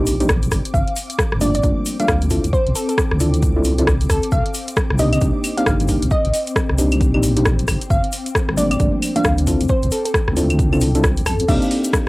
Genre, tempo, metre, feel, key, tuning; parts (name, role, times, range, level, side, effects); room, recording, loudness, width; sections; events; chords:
UK garage, two-step garage; 134 BPM; 4/4; swing 61% on 16ths; C dorian; A4 = 440 Hz
ethereal airy pad; sustained chords; 0.0-12.1 s; G3 to D6; -29 LUFS; left 4 dB; ensemble chorus, built-in reverb, sidechain pumping, cassette tape
deep mellow chord stab; stabs; 0.0-12.1 s; F3 to A4; -21 LUFS; equal; chorus, cassette tape, tape echo
deep soft wobble bass; bass; 0.0-11.6 s; G1 to F2; -19 LUFS; equal; chorus
garage drum kit; drums; 0.1-12.0 s; claves, crash cymbal, hi-hat, rim click; -23 LUFS; equal
egg shaker; percussion; 0.1-12.0 s; -32 LUFS; left 5 dB
electronic kick drum; drums; 0.3-12.0 s; -20 LUFS; equal; overdrive
glassy wavetable pluck; melody; 0.7-11.6 s; A4 to F5; -24 LUFS; equal; chorus, cassette tape, tape echo
light reverb; home recording on cassette; -15 LUFS; side -21 dB against mid
0.0-11.5 A section
0.0 Cm7; 0.5 Gm7; 2.3 Dm7; 4.3 Cm7; 7.7 Gm7; 9.5 Dm7; 11.5 Cm7